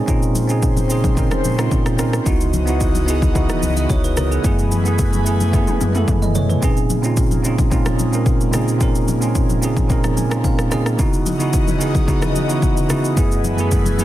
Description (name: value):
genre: amapiano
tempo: 110 BPM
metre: 4/4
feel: straight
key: unclear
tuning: A4 = 440 Hz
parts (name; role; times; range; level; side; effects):
- bell-like tine electric piano; accompaniment; 0.0-14.0 s; Gb2 to Ab5; -19 LUFS; right 2 dB; none
- airy breathy pad; sustained chords; 0.0-14.0 s; Db3 to Ab5; -26 LUFS; left 2 dB; chorus, phaser, sidechain pumping
- sub bass with octave; bass; 0.1-6.6 s; Db2 to Bb2; -20 LUFS; equal; none
- deep house drum kit; drums; 0.1-14.0 s; kick drum, rim click, shaker, toms; -19 LUFS; equal; overdrive
- congas; percussion; 0.4-14.0 s; none; -28 LUFS; left 5 dB; none
room: light reverb, digital ambience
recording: dense, heavily limited modern master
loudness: -15 LUFS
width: side -14 dB against mid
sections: 0.0-14.0 A section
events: drum fill 5.5-6.6; tine electric piano fill 9.9-11.0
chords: 0.0 Bbm11; 2.3 Dbm11; 4.4 Gbm11; 6.6 Bbm11; 11.0 Dbm11; 13.2 Gbm11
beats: | 0.08 0.63 1.17 1.72 | 2.26 2.81 3.35 3.90 | 4.44 4.99 5.54 6.08 | 6.63 7.17 7.72 8.26 | 8.81 9.35 9.90 10.44 | 10.99 11.54 12.08 12.63 | 13.17 13.72